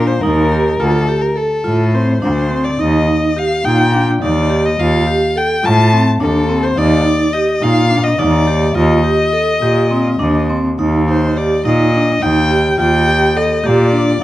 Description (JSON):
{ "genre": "contemporary instrumental, chamber music in an uneven meter", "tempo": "211 BPM (eighths)", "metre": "7/8", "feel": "straight", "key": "Eb lydian", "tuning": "A4 = 440 Hz", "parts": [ { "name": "rich violin", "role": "melody", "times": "0.0-14.2 s", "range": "A4 to A5", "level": "-17 LUFS", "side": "left 2 dB", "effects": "none" }, { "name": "vibraphone with medium mallets", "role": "arpeggios", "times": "0.0-14.1 s", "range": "C4 to A4", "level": "-16 LUFS", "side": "right 1 dB", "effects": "none" }, { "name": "rich cello", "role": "bass", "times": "0.0-14.2 s", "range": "D2 to Bb2", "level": "-15 LUFS", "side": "equal", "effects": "none" } ], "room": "light reverb", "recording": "dark, warm production", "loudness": "-11 LUFS", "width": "side -15 dB against mid", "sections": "0.0-10.8 A section; 10.8-14.2 B section", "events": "none", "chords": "0.0 Ebmaj7; 0.8 Dm7; 2.8 Ebmaj7; 4.8 Dm7/Eb (rootless); 6.8 Ebmaj7; 8.7 Eb", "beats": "0.23 0.52 | 0.80 1.08 1.37 1.65 1.94 2.23 2.52 | 2.80 3.09 3.37 3.66 3.94 4.22 4.51 | 4.79 5.07 5.36 5.64 5.92 6.21 6.49 | 6.77 7.05 7.33 7.62 7.90 8.18 8.46 | 8.75 9.04 9.32 9.61 9.90 10.19 10.49 | 10.78 11.07 11.37 11.65 11.94 12.23 12.51 | 12.80 13.08 13.37 13.65 13.94 14.22" }